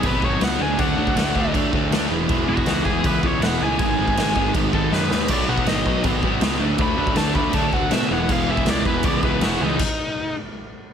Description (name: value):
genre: punk rock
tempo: 160 BPM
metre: 4/4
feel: straight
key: unclear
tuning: A4 = 440 Hz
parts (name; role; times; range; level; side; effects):
- biting lead guitar; melody; 0.0-10.3 s; D#4 to B5; -25 LUFS; left 2 dB; overdrive
- distorted electric guitar; riff; 0.0-9.8 s; G#2 to E4; -25 LUFS; right 13 dB; distortion
- sludgy distorted guitar; riff; 0.0-9.8 s; E2 to D4; -24 LUFS; left 12 dB; overdrive
- fuzz picked electric bass; bass; 0.0-9.8 s; E1 to B2; -26 LUFS; equal; overdrive
- raw garage drum kit; drums; 0.0-9.9 s; crash cymbal, kick drum, snare drum; -23 LUFS; equal; none
room: light reverb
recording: none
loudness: -18 LUFS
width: side -8 dB against mid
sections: 0.0-10.9 A section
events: lead electric guitar solo 0.0-10.9; drum fill 4.9-5.3; stop 9.8-10.9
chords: 0.0 B; 0.6 D; 2.1 E; 3.8 G#m; 5.3 B; 6.6 D; 8.1 E; 9.8 N.C.